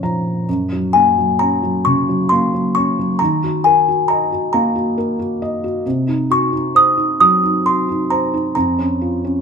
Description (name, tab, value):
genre	children's music, lullaby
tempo	44 BPM (dotted quarters)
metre	6/8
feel	rubato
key	unclear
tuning	A4 = 439 Hz
part	felt-muted upright piano	accompaniment	0.0-9.4 s	F2 to Bb5	-18 LUFS	equal	none
part	music box	melody	0.9-9.4 s	Ab5 to Eb6	-15 LUFS	left 1 dB	none
room	light reverb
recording	close, detailed microphones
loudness	-14 LUFS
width	side -6 dB against mid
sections	0.5-9.4 A section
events	felt piano fill 0.0-0.5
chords	0.5 Gb; 3.2 Ebm; 5.8 Cdim; 8.6 Bbm/F